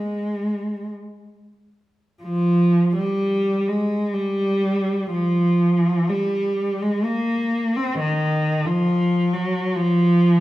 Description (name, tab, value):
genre	classical, free, expressive piece for unaccompanied cello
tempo	37-72 BPM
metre	3/4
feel	rubato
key	unclear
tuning	A4 = 440 Hz
part	warm cello	solo	0.0-10.4 s	Eb3 to C4	-18 LUFS	equal	none
room	wet recital hall reverb, RT60 1.5 s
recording	none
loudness	-18 LUFS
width	side -16 dB against mid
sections	0.0-2.2 A section; 2.2-10.4 B section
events	none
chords	none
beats	0.91 | 2.23 3.20 4.16 | 5.14 6.11 7.05 | 7.99 8.89 9.77